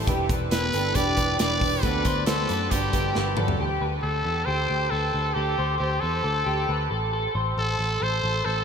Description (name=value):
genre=jangly indie pop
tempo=136 BPM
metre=4/4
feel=straight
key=unclear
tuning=A4 = 437 Hz
part: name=fingerpicked swing-style acoustic guitar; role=accompaniment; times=0.0-3.6 s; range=D3 to B4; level=-35 LUFS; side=right 4 dB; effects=lush chorus
part: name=electric guitar through a small old amp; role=arpeggios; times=0.0-8.6 s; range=G4 to C5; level=-29 LUFS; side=equal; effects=analog chorus
part: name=vintage muted picked electric bass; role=bass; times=0.0-8.6 s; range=E1 to F#2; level=-28 LUFS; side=equal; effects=none
part: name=modern studio drum kit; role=drums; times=0.1-3.6 s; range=hi-hat, kick drum, snare drum, toms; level=-27 LUFS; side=equal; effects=none
part: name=growling trumpet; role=melody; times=0.5-8.6 s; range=G4 to D5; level=-26 LUFS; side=equal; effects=ping-pong delay
part: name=vibraphone with medium mallets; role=second line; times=0.5-3.4 s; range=G3 to D4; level=-36 LUFS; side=left 3 dB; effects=none
room=wet huge ambient reverb, RT60 8.3 s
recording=dreamy mix soaked in reverb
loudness=-22 LUFS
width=side -6 dB against mid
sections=0.0-3.6 A section; 3.6-8.6 B section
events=drum fill 3.2-3.6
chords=0.1 Em7; 1.8 D7; 2.7 Gmaj7; 3.6 D7sus4; 6.9 Am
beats=| 0.07 0.51 0.95 1.39 | 1.83 2.27 2.71 3.15 | 3.60 4.04 4.48 4.92 | 5.36 5.80 6.24 6.68 | 7.12 7.56 8.01 8.45